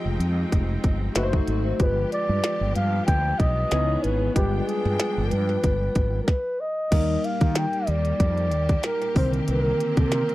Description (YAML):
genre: polished 1980s jazz-funk pop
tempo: 94 BPM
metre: 4/4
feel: swing 54% on 16ths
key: unclear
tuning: A4 = 440 Hz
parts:
  - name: barky tine electric piano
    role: accompaniment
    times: 0.0-10.3 s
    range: D3 to Eb5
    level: -29 LUFS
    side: left 1 dB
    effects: overdrive, ensemble chorus
  - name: bright studio string section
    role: sustained chords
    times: 0.0-10.3 s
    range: Bb2 to G5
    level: -34 LUFS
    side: equal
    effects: none
  - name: fretless electric bass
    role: bass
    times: 0.1-10.2 s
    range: F1 to Eb3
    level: -24 LUFS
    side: equal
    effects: wide subtle chorus
  - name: minimal click drum kit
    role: drums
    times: 0.2-10.3 s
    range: crash cymbal, hi-hat, kick drum, snare drum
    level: -23 LUFS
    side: equal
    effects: overdrive
  - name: breathy flugelhorn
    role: melody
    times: 1.8-10.3 s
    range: G4 to G5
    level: -26 LUFS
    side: equal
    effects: slapback echo
room: little or no reverb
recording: dry, close 1970s-style studio recording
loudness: -21 LUFS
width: side -17 dB against mid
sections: 0.0-6.9 A section; 6.9-10.3 B section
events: stop 6.3-6.9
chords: 0.0 Fm9; 1.2 F#dim7; 1.8 G7b9; 3.7 Dbm9; 4.4 G7b9; 6.9 Ebmaj7; 9.2 Cm9